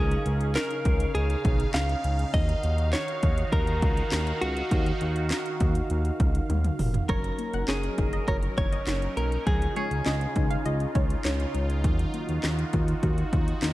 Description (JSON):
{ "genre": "synth-pop", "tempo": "101 BPM", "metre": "4/4", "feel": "straight", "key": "F# major", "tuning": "A4 = 440 Hz", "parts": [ { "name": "direct-recorded clean electric guitar", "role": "melody", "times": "0.0-10.9 s", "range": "F#4 to E#5", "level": "-31 LUFS", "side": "equal", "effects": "tape echo" }, { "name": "sweeping resonant pad", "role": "sustained chords", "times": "0.0-13.7 s", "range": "C#3 to E#5", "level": "-34 LUFS", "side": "right 2 dB", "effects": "chorus" }, { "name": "smooth synth bass", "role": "bass", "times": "0.0-13.7 s", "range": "E#1 to D#2", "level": "-27 LUFS", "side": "equal", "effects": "none" }, { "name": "house drum kit", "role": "drums", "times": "0.1-13.7 s", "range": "handclaps, hi-hat, kick drum, snare drum, toms", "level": "-27 LUFS", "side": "equal", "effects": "overdrive" }, { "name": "funky polysynth comp", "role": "second line", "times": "7.1-11.7 s", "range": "C#5 to F#5", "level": "-37 LUFS", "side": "equal", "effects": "chorus, tape echo" }, { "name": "soft round pluck", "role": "arpeggios", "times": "7.1-13.7 s", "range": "E#3 to F#4", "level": "-36 LUFS", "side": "left 2 dB", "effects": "chorus, tape echo" } ], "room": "light reverb, digital ambience", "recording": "dark, warm production", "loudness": "-24 LUFS", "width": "side -16 dB against mid", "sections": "0.0-7.1 A section; 7.1-13.7 B section", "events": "drum fill 6.5-7.1", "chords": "0.0 C#add9; 2.3 D#madd9; 7.1 F#6; 9.5 C#add9; 11.8 D#madd9" }